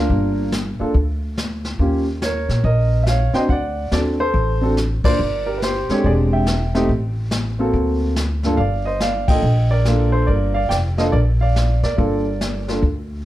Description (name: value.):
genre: jazz piano trio.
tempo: 141 BPM.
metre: 4/4.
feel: swing 65% on 8ths.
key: G minor.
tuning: A4 = 438 Hz.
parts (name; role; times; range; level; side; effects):
warm grand piano; melody; 0.0-12.8 s; G2 to G5; -20 LUFS; right 1 dB; none.
upright bass; bass; 0.0-13.2 s; E1 to Bb2; -20 LUFS; equal; none.
vintage brush drum kit; drums; 0.1-13.2 s; brushed snare drum, hi-hat, kick drum, ride cymbal, snare drum; -24 LUFS; left 1 dB; none.
room: light reverb.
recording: dark, warm production, faint mains hum.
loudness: -16 LUFS.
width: side -14 dB against mid.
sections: 0.0-8.6 A section; 8.6-13.2 A section.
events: band accent 5.0, 9.2.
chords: 0.0 Gm7; 1.8 Eb7(no3); 3.5 D7; 5.2 Gm; 6.0 E7alt; 6.9 N.C.; 7.7 D7b13; 8.6 Gm7.